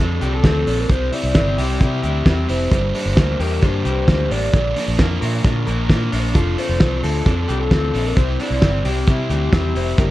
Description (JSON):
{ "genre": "jangly indie pop", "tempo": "132 BPM", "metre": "4/4", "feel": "straight", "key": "unclear", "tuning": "A4 = 435 Hz", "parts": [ { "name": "hollow clarinet-like synth lead", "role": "melody", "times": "0.0-10.1 s", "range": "A4 to D5", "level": "-26 LUFS", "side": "left 1 dB", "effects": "chorus, phaser, tape echo" }, { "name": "crunchy overdriven guitar", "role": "accompaniment", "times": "0.0-10.1 s", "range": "G2 to Bb4", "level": "-27 LUFS", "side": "right 5 dB", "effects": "none" }, { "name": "electric guitar through a small old amp", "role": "arpeggios", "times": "0.0-10.1 s", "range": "G2 to Bb4", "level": "-25 LUFS", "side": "left 5 dB", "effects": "tape echo" }, { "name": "vintage muted fingered electric bass", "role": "bass", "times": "0.0-10.1 s", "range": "F1 to C3", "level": "-21 LUFS", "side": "equal", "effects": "none" }, { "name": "cloth-damped thuddy drum kit", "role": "drums", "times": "0.2-10.1 s", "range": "hi-hat, kick drum, snare drum", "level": "-18 LUFS", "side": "equal", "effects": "none" }, { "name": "chorused retro synth keys", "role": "accompaniment", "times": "6.3-10.1 s", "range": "D4 to C5", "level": "-33 LUFS", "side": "right 1 dB", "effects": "none" } ], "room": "small room reverb", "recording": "dark, warm production", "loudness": "-15 LUFS", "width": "side -16 dB against mid", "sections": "0.0-10.1 A section", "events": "none", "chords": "0.0 F6; 0.9 C; 2.7 Gm; 4.5 Bb; 6.4 F6; 8.2 C" }